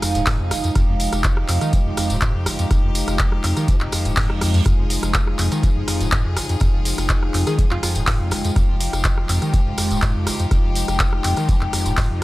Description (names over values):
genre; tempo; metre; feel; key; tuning
acid house; 123 BPM; 4/4; straight; F minor; A4 = 439 Hz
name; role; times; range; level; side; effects
bright chamber string section; sustained chords; 0.0-12.2 s; F3 to Ab4; -30 LUFS; left 1 dB; sidechain pumping
overdriven acid bass; riff; 0.0-12.2 s; F1 to F3; -24 LUFS; equal; distortion, tube saturation, ensemble chorus, sidechain pumping
electro analog drum machine; drums; 0.0-12.1 s; handclaps, hi-hat, rim click; -25 LUFS; equal; none
tambourine; percussion; 0.0-12.1 s; none; -30 LUFS; equal; none
warbly tape-like pad; texture; 0.0-12.2 s; Ab3 to G5; -27 LUFS; equal; chorus, built-in reverb, sidechain pumping
warm sub bass; bass; 0.2-12.2 s; Eb1 to F2; -24 LUFS; equal; tube saturation, sidechain pumping
electronic kick drum; drums; 0.3-12.1 s; none; -20 LUFS; equal; none
reverse cymbal; sound effects; 4.0-4.7 s; none; -34 LUFS; right 8 dB; none
hollow square pluck; melody; 7.5-7.9 s; F4 to Ab4; -30 LUFS; left 1 dB; lush chorus, analog delay
room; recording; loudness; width
little or no reverb; dry, gritty hardware recording; -17 LUFS; side -18 dB against mid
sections
0.0-12.2 A section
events
reverse cymbal 4.0-4.7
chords
0.0 Fm7